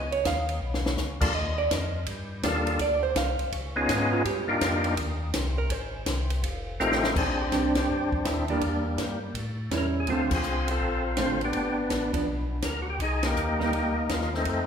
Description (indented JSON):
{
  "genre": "soul jazz organ trio",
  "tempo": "165 BPM",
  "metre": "4/4",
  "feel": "swing 65% on 8ths",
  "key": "Bb major from 7.2 s",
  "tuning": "A4 = 440 Hz",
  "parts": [
    { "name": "hollow-body jazz guitar", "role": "accompaniment", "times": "0.0-13.7 s", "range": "D3 to E#5", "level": "-30 LUFS", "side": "right 4 dB", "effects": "none" },
    { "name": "tonewheel organ", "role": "bass", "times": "0.0-14.7 s", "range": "F1 to A2", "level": "-31 LUFS", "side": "left 1 dB", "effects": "chorus vibrato" },
    { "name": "compact cocktail drum kit", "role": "drums", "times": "0.1-14.6 s", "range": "crash cymbal, hi-hat, kick drum, ride cymbal, snare drum", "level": "-32 LUFS", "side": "left 1 dB", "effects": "none" },
    { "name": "percussive tonewheel organ", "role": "melody", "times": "1.2-14.7 s", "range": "G3 to C5", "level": "-27 LUFS", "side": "left 1 dB", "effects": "overdrive, fast rotary speaker" }
  ],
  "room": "wet recital hall reverb, RT60 1.5 s",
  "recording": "recorded in a church or concert hall",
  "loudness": "-24 LUFS",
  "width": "side -7 dB against mid",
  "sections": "0.0-7.2 A section; 7.2-14.7 B section",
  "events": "hollow-body jazz guitar solo 0.0-7.2; drum fill 0.6-1.0, 6.8-7.2; band accent 7.7, 10.3, 13.2",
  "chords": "0.0 C#9; 1.3 Ebmaj9#11; 2.8 Csus24; 3.5 C#9; 4.3 Cm11; 5.7 Ab; 6.4 F9; 7.2 Bb69; 8.6 Edim; 9.4 A7; 10.1 Dm7; 11.5 G; 13.0 Cm7"
}